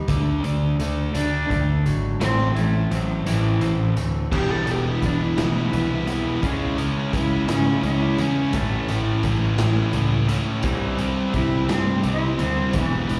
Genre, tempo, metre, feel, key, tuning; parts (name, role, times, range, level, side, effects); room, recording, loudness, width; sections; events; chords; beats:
quiet-loud alternative rock; 57 BPM (dotted quarters); 6/8; straight; E minor; A4 = 440 Hz
electric guitar through a small old amp; arpeggios; 0.0-12.7 s; A2 to E4; -35 LUFS; equal; slapback echo
fuzz fingered electric bass; bass; 0.0-13.2 s; E1 to G#2; -28 LUFS; equal; overdrive
thick fuzz guitar; riff; 0.1-13.2 s; E2 to D4; -26 LUFS; equal; distortion
raw garage drum kit; drums; 0.1-13.2 s; crash cymbal, hi-hat, kick drum, snare drum; -31 LUFS; equal
rich cello; melody; 1.2-13.1 s; E3 to A4; -29 LUFS; equal; slapback echo, digital delay
tight distorted guitar; riff; 4.3-13.2 s; A2 to E4; -33 LUFS; equal; distortion, slapback echo
little or no reverb; live gig heard through the venue's PA, recital hall reverb; -22 LUFS; mono
0.0-4.3 A section; 4.3-13.2 B section
half time 0.0-4.3; cello solo 4.3-13.2
0.1 D; 2.2 Am; 4.3 Em; 6.4 C#m; 8.5 A; 10.6 C
| 0.09 1.15 | 2.21 3.26 | 4.32 5.38 | 6.43 7.49 | 8.54 9.59 | 10.65 11.70 | 12.75